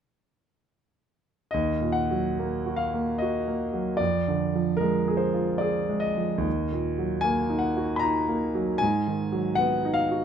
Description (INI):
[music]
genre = classical, romantic nocturne for solo piano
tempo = 74 BPM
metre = 3/4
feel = uneven beats, rubato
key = Eb minor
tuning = A4 = 440 Hz
[part]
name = clear concert grand piano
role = solo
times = 1.5-10.2 s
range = Eb2 to Cb6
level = -24 LUFS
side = right 1 dB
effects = none
[sound]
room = little or no reverb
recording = close, detailed microphones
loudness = -24 LUFS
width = side -8 dB against mid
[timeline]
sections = 1.5-10.2 A section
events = none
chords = 1.5 Ebm; 4.0 Ddim/F; 6.5 Ebm; 8.8 Abm7